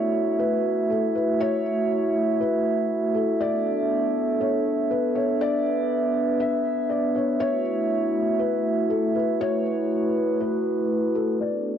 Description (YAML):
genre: hip hop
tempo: 120 BPM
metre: 4/4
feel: half-time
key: unclear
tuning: A4 = 440 Hz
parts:
  - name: felt-muted upright piano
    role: melody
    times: 0.0-11.8 s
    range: A4 to E5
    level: -29 LUFS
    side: left 6 dB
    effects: low-pass filter, cassette tape, tape echo
  - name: glass harmonica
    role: sustained chords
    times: 0.0-11.8 s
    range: A3 to E5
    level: -22 LUFS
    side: right 1 dB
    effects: low-pass filter, cassette tape
room: light reverb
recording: home recording on cassette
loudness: -21 LUFS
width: side -8 dB against mid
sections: 0.0-11.4 A section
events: none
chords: 0.0 F#m7; 3.4 Bm9; 7.4 F#m7